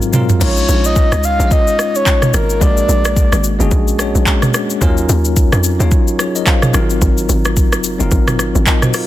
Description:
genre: amapiano.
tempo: 109 BPM.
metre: 4/4.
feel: swing 58% on 16ths.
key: Bb minor.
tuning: A4 = 440 Hz.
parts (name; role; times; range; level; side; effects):
bell-like tine electric piano; accompaniment; 0.0-9.1 s; Ab2 to F5; -18 LUFS; left 2 dB; fast stereo tremolo.
afro-pop drum kit; drums; 0.0-9.1 s; crash cymbal, handclaps, hi-hat, kick drum, rim click, shaker, toms; -14 LUFS; equal; none.
breathy flute-like synth lead; melody; 0.4-3.4 s; Bb4 to F5; -17 LUFS; left 1 dB; chorus, digital delay.
hollow log drum bass; bass; 0.4-8.7 s; F1 to F2; -15 LUFS; equal; none.
room: digital ambience.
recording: dense, heavily limited modern master.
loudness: -11 LUFS.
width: side -14 dB against mid.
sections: 0.4-9.1 A section.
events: drum fill 0.0-0.4; drop 0.4-9.1.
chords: 0.4 Bbm7; 2.6 Bb7alt; 4.8 Ebm9; 6.7 Ab13.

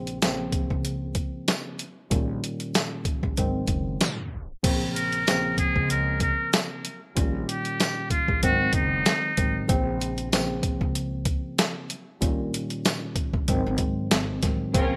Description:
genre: hip hop, boom-bap hip-hop.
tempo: 95 BPM.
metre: 4/4.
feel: swing 57% on 16ths.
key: Bb minor.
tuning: A4 = 435 Hz.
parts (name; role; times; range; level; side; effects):
mellow tine electric piano; accompaniment; 0.0-15.0 s; Bb2 to Db4; -32 LUFS; equal; cassette tape, high-pass filter, low-pass filter.
upright bass; bass; 0.0-15.0 s; Gb1 to Ab2; -34 LUFS; equal; none.
boom bap sampler-style drum kit; drums; 0.1-14.9 s; crash cymbal, hi-hat, kick drum, snare drum; -28 LUFS; equal; none.
tambourine; percussion; 0.2-14.3 s; none; -36 LUFS; equal; none.
trumpet with metal mute; melody; 5.0-9.7 s; Eb4 to Bb4; -29 LUFS; equal; high-pass filter, low-pass filter, digital delay.
clear studio string section; stabs; 14.7-15.0 s; Db4 to Bb4; -30 LUFS; equal; high-pass filter, low-pass filter.
room: light reverb, studio reverb.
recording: rough home demo mix, tape stop.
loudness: -26 LUFS.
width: mono.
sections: 0.0-4.6 A section; 4.6-15.0 B section.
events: tape stop 4.0-4.6.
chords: 0.0 Bbmadd9; 2.1 Eb7/Bb; 3.4 Ab7; 4.6 Bbmadd9; 7.2 Eb7/Bb; 8.4 Ab7; 9.7 Bbmadd9; 12.2 Eb7/Bb; 13.5 Ab7.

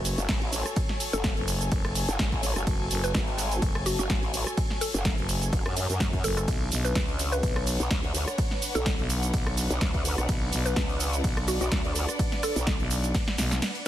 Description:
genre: bass house.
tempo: 126 BPM.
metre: 4/4.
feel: swing 55% on 16ths.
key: F# minor.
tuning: A4 = 440 Hz.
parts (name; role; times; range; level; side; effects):
mallet-like synth pluck; melody; 0.0-12.6 s; F#4 to B4; -34 LUFS; left 1 dB; chorus, ping-pong delay.
growling FM bass; bass; 0.0-13.6 s; F#1 to B1; -28 LUFS; equal; sidechain pumping.
dark studio string section; texture; 0.0-13.9 s; D4 to G#5; -35 LUFS; equal; sidechain pumping.
house drum kit; drums; 0.1-13.8 s; cabasa, hi-hat, ride cymbal, rim click, snare drum; -30 LUFS; right 1 dB; studio reverb.
growl bass; bass; 0.2-12.8 s; F#1 to F#2; -29 LUFS; equal; chorus, sidechain pumping.
electronic kick drum; drums; 0.3-13.2 s; none; -29 LUFS; equal; studio reverb.
room: digital ambience.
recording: dense, heavily limited modern master.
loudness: -24 LUFS.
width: side -12 dB against mid.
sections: 0.0-13.9 A section.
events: drum fill 13.1-13.9; break 13.6.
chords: 0.0 F#madd9; 6.5 Bmadd9.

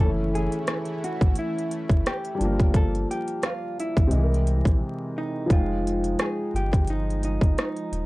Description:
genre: lo-fi hip hop.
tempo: 87 BPM.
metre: 4/4.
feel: swing 56% on 16ths.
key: unclear.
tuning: A4 = 439 Hz.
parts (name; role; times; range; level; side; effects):
vintage hollow-body jazz guitar; melody; 0.0-8.1 s; D#4 to A4; -32 LUFS; right 1 dB; none.
dark upright piano; accompaniment; 0.0-8.1 s; C3 to G5; -28 LUFS; left 1 dB; cassette tape.
lush unison pad; sustained chords; 0.1-8.1 s; Fb3 to Bb4; -37 LUFS; equal; chorus, tremolo.
soft dub sub bass; bass; 0.0-8.1 s; Eb1 to C2; -26 LUFS; equal; none.
organic electronic drum kit; drums; 0.4-8.1 s; hi-hat, kick drum, rim click; -22 LUFS; equal; none.
room: little or no reverb.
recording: dry, gritty hardware recording, transformer saturation, vinyl crackle.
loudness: -22 LUFS.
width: side -20 dB against mid.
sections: 0.0-5.5 A section; 5.5-8.1 B section.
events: break 4.8-5.5.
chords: 0.0 Gbm7; 2.4 Gm7; 4.1 C7alt; 5.5 Fm9.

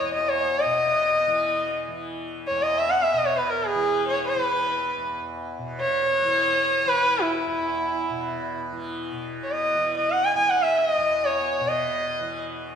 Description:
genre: indian classical, Hindustani.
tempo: free time.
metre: none.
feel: none.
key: E raga yaman.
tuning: A4 = 440 Hz.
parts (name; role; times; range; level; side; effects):
rich sarangi; melody; 0.0-12.4 s; E4 to G#5; -22 LUFS; equal; none.
tanpura; drone; 0.0-12.8 s; E2 to E3; -33 LUFS; left 1 dB; none.
room: wet recital hall reverb, RT60 1.5 s.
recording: recorded in a church or concert hall.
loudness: -21 LUFS.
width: side -7 dB against mid.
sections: 0.0-9.1 A section; 9.1-12.8 A section.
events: none.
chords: none.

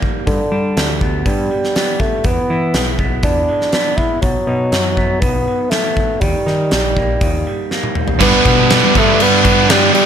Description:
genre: quiet-loud alternative rock.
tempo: 121 BPM.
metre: 4/4.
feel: straight.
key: G major.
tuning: A4 = 441 Hz.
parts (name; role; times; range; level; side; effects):
dark bassoon; melody; 0.0-10.1 s; D3 to E4; -18 LUFS; equal; none.
electric guitar through a small old amp; arpeggios; 0.0-8.2 s; G2 to E4; -24 LUFS; right 2 dB; analog delay.
huge arena drum kit; drums; 0.0-10.1 s; crash cymbal, hi-hat, kick drum, snare drum, toms; -17 LUFS; equal; none.
growling picked electric bass; bass; 0.3-9.9 s; Bb1 to G3; -19 LUFS; equal; overdrive.
tonewheel organ; sustained chords; 8.2-10.1 s; none; barely audible; none; none.
fuzz guitar; riff; 8.2-10.1 s; G2 to D4; -17 LUFS; left 12 dB; distortion.
thick fuzz guitar; riff; 8.2-10.1 s; G2 to G3; -17 LUFS; right 4 dB; distortion.
tight distorted guitar; riff; 8.2-10.1 s; G2 to D4; -16 LUFS; right 14 dB; distortion.
room: small room reverb.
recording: none.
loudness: -12 LUFS.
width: side -8 dB against mid.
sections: 0.0-8.2 A section; 8.2-10.1 B section.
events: drum fill 7.7-8.2.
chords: 0.3 G; 2.3 E; 4.2 B; 6.2 Eb; 8.2 G.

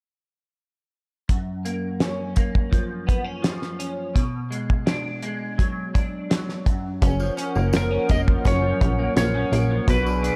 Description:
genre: indie pop, bedroom pop.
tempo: 84 BPM.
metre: 4/4.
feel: straight.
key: F# major.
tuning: A4 = 441 Hz.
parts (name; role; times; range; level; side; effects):
semi-hollow electric guitar; accompaniment; 1.3-10.4 s; F#2 to D4; -29 LUFS; equal; ensemble chorus, warbly pitch drift.
cloth-damped thuddy drum kit; drums; 1.3-10.4 s; hi-hat, kick drum, snare drum; -24 LUFS; equal; none.
hollow soft pad; sustained chords; 7.3-10.4 s; G#4 to E#6; -36 LUFS; equal; chorus.
plucky analog bass; bass; 7.0-10.3 s; E#1 to B1; -25 LUFS; equal; none.
tambourine; percussion; 7.0-10.4 s; none; -48 LUFS; equal; none.
clean lap steel guitar; melody; 7.8-10.4 s; A#4 to D#5; -28 LUFS; equal; analog chorus.
room: studio ambience.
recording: none.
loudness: -23 LUFS.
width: mono.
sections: 1.3-7.0 A section; 7.0-10.4 B section.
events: none.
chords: 1.3 F#maj7; 4.2 Bm6; 6.7 N.C.; 7.0 F#maj7.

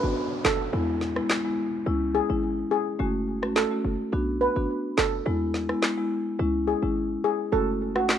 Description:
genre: dancehall.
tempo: 106 BPM.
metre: 4/4.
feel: straight.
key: B dorian.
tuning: A4 = 440 Hz.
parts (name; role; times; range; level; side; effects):
marimba with medium mallets; accompaniment; 0.0-8.1 s; G#3 to F#4; -27 LUFS; left 1 dB; none.
short 808-style bass; bass; 0.0-8.2 s; F#1 to E2; -30 LUFS; equal; none.
downlifter; sound effects; 0.0-4.1 s; none; -39 LUFS; left 1 dB; none.
steel pan; melody; 0.4-8.0 s; F#4 to B4; -27 LUFS; right 1 dB; digital delay.
electronic snare drum, handclaps and rim click; drums; 0.4-8.2 s; none; -27 LUFS; equal; vintage 12-bit sampler grit.
room: light reverb.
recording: rough home demo mix.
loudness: -24 LUFS.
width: side -9 dB against mid.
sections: 0.0-8.2 A section.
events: break 0.0-8.2.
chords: 0.0 Bm; 0.7 E; 1.9 C#m; 3.0 F#m; 4.1 Bm; 5.3 E; 6.4 C#m; 7.5 F#m.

